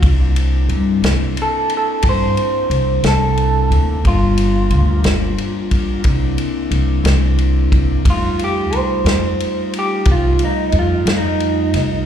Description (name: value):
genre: slow blues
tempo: 60 BPM (dotted quarters)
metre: 12/8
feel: straight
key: C mixolydian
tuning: A4 = 440 Hz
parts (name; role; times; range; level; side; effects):
- mellow tonewheel organ; sustained chords; 0.0-12.0 s; G3 to F4; -23 LUFS; left 2 dB; slow rotary speaker
- upright bass; bass; 0.0-12.0 s; G1 to G2; -16 LUFS; equal; none
- warm soul drum kit; drums; 0.0-11.9 s; kick drum, ride cymbal, snare drum; -20 LUFS; equal; slapback echo
- electric guitar through a small old amp; melody; 1.4-12.1 s; Eb4 to C5; -19 LUFS; right 2 dB; spring reverb, slapback echo
room: little or no reverb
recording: live gig heard through the venue's PA, club reverb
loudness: -14 LUFS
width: side -9 dB against mid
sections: 0.0-12.1 A section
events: clean electric guitar solo 0.0-12.1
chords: 0.0 C9; 4.0 Gm7; 6.1 C9; 8.1 F9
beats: | 0.03 1.03 2.04 3.04 | 4.05 5.05 6.05 7.06 | 8.06 9.07 10.07 11.07